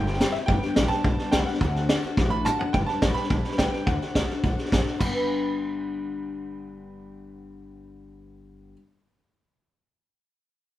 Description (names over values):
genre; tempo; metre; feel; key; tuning
rockabilly; 212 BPM; 4/4; straight; G major; A4 = 440 Hz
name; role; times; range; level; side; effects
bright upright piano; melody; 0.0-8.7 s; E5 to B5; -31 LUFS; right 1 dB; analog delay
picked steel-string acoustic guitar; accompaniment; 0.0-8.8 s; G2 to B4; -30 LUFS; left 3 dB; none
upright bass; bass; 0.0-8.7 s; G1 to D2; -28 LUFS; equal; none
vintage drum kit; drums; 0.1-5.1 s; crash cymbal, hi-hat, kick drum, snare drum, toms; -25 LUFS; equal; none
room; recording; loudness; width
moderate studio reverb, RT60 0.8 s; band playing live in one room; -22 LUFS; side -14 dB against mid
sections
0.0-2.7 A section; 2.7-5.0 B section; 5.0-7.3 C section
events
drum fill 2.2-2.7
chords
0.5 G; 1.6 D; 2.7 G; 3.9 D; 5.0 G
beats
0.20 | 0.48 0.77 1.05 1.33 | 1.61 1.90 2.18 2.46 | 2.74 3.02 3.31 3.59 | 3.87 4.16 4.44 4.72 | 5.01 5.29 5.57 5.86 | 6.14 6.42 6.71 6.99